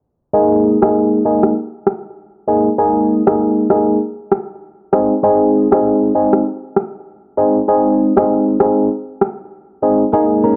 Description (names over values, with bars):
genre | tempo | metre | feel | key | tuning
afrobeats | 98 BPM | 4/4 | swing 58% on 16ths | unclear | A4 = 440 Hz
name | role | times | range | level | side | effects
barking FM electric piano | accompaniment | 0.3-10.6 s | Ab3 to Ab4 | -15 LUFS | equal | chorus
electronic rim click | drums | 0.8-9.4 s | none | -19 LUFS | equal | none
direct-recorded clean electric guitar | riff | 10.1-10.6 s | Db4 to Bb4 | -18 LUFS | equal | none
room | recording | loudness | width
light reverb | dry, gritty hardware recording, cassette tape, low-pass filter | -15 LUFS | mono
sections
0.3-10.6 A section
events
hi-hats muted 0.3-10.1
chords
0.3 Ebsus4; 4.9 Ab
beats
| 0.34 0.95 1.56 2.17 | 2.79 3.40 4.01 4.62 | 5.23 5.85 6.46 7.07 | 7.68 8.29 8.91 9.52 | 10.13